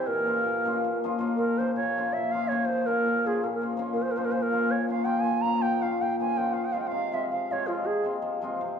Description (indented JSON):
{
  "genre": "balkan folk",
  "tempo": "324 BPM (eighths)",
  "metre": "7/8",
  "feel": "straight",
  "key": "Bb minor",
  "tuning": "A4 = 439 Hz",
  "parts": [
    { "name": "reedy ney", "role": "melody", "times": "0.0-8.1 s", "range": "F4 to Bb5", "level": "-28 LUFS", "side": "right 4 dB", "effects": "none" },
    { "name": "cimbalom", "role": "accompaniment", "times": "0.0-8.8 s", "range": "Bb2 to F4", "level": "-28 LUFS", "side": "left 3 dB", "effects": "none" }
  ],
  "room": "wet recital hall reverb, RT60 1.6 s",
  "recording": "dark, warm production",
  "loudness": "-25 LUFS",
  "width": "side -7 dB against mid",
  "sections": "0.0-1.4 A section; 1.4-8.8 B section",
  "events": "ney solo 1.4-8.8",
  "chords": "0.1 Bbm; 6.5 Fm",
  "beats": "| 0.06 0.24 0.43 0.61 0.80 0.98 1.17 | 1.35 1.54 1.73 1.91 2.10 2.28 2.47 | 2.65 2.84 3.02 3.21 3.39 3.58 3.76 | 3.95 4.13 4.32 4.50 4.69 4.87 5.06 | 5.24 5.43 5.61 5.80 5.98 6.17 6.35 | 6.54 6.72 6.91 7.09 7.28 7.47 7.65 | 7.84 8.02 8.21 8.39 8.58 8.76"
}